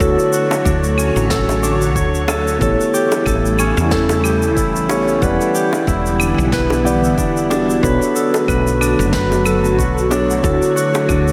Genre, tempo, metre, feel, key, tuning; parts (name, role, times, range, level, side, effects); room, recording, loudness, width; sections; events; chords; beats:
sunset chillout; 92 BPM; 4/4; swing 56% on 16ths; E dorian; A4 = 440 Hz
mellow tine electric piano; accompaniment; 0.0-11.3 s; D3 to F#5; -22 LUFS; equal; tape echo
soft string machine; sustained chords; 0.0-11.3 s; C#3 to C#5; -23 LUFS; equal; phaser, ensemble chorus
Celtic harp; arpeggios; 0.0-11.3 s; C#4 to C#5; -22 LUFS; equal; low-pass filter, tape echo
woody fretless electric bass; bass; 0.0-11.3 s; E1 to E2; -22 LUFS; equal
electronic kick drum; drums; 0.0-11.2 s; -26 LUFS; equal
shaker, claves and snare drum; drums; 0.0-11.3 s; -28 LUFS; equal
bongos; percussion; 0.5-11.1 s; -28 LUFS; equal
wet lush hall reverb, RT60 1.9 s, small room reverb; dreamy mix soaked in reverb; -16 LUFS; mono
0.0-11.3 A section
0.0 Dmaj7; 2.6 A7; 5.2 Em7; 7.8 Bm7; 10.4 Dmaj7
| 0.00 0.65 1.31 1.96 | 2.61 3.26 3.92 4.57 | 5.22 5.87 6.52 7.18 | 7.83 8.48 9.13 9.78 | 10.44 11.09